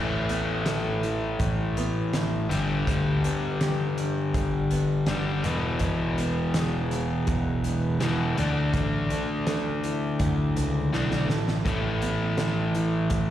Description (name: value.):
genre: quiet-loud alternative rock.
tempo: 82 BPM.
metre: 4/4.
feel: straight.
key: unclear.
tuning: A4 = 440 Hz.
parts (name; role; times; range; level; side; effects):
fingerpicked steel-string acoustic guitar; arpeggios; 0.0-13.3 s; D3 to A4; -35 LUFS; right 5 dB; slapback echo.
overdriven electric guitar; riff; 0.0-13.3 s; E2 to D4; -27 LUFS; left 3 dB; spring reverb, slapback echo.
fuzz picked electric bass; bass; 0.0-13.3 s; E1 to D2; -28 LUFS; right 2 dB; overdrive.
loose indie drum kit; drums; 0.3-13.3 s; hi-hat, kick drum, snare drum; -31 LUFS; right 1 dB; none.
room: studio ambience.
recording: live gig heard through the venue's PA, recital hall reverb.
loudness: -24 LUFS.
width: side -12 dB against mid.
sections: 0.0-13.3 A section.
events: drum fill 10.9-11.7.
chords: 0.0 Asus2; 2.5 G; 5.4 Eadd9; 8.4 Dadd9; 11.7 Asus2.